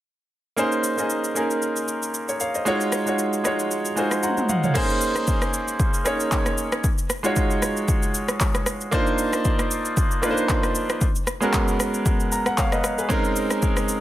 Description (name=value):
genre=amapiano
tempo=115 BPM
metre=4/4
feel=swing 55% on 16ths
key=Bb minor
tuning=A4 = 439 Hz
part: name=clear concert grand piano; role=accompaniment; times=0.6-14.0 s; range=Ab3 to Bb5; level=-22 LUFS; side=right 1 dB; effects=none
part: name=deep house drum kit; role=drums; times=0.6-14.0 s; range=crash cymbal, handclaps, kick drum, rim click, shaker, toms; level=-23 LUFS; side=equal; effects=overdrive
room=light reverb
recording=dense, heavily limited modern master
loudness=-20 LUFS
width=side -14 dB against mid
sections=0.6-4.8 A section; 4.8-14.0 B section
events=grand piano fill 3.7-4.8, 12.1-13.1; drum fill 4.2-4.8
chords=0.6 Bbm11; 2.7 Ebm11; 4.8 Bbm11; 6.8 Ebm11; 8.9 Cm11; 11.0 Abm11; 13.1 Bbm11